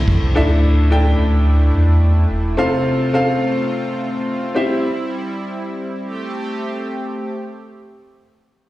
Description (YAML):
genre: pop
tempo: 92-108 BPM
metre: 4/4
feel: straight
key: A minor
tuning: A4 = 440 Hz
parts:
  - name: clear upright piano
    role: accompaniment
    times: 0.0-4.9 s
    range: A2 to G5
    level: -18 LUFS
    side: left 1 dB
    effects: plate reverb
  - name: chorused pulse-width pad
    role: sustained chords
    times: 0.0-7.3 s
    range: G3 to G4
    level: -25 LUFS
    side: right 1 dB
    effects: none
  - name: warm sub bass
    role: bass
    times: 0.0-2.6 s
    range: E1 to E2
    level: -14 LUFS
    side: equal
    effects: none
room: light reverb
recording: live gig heard through the venue's PA, recital hall reverb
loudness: -16 LUFS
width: side -16 dB against mid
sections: 0.0-7.3 A section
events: slowing down 2.6-7.3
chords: 0.4 Dsus2; 2.6 F; 4.6 C; 6.0 Am7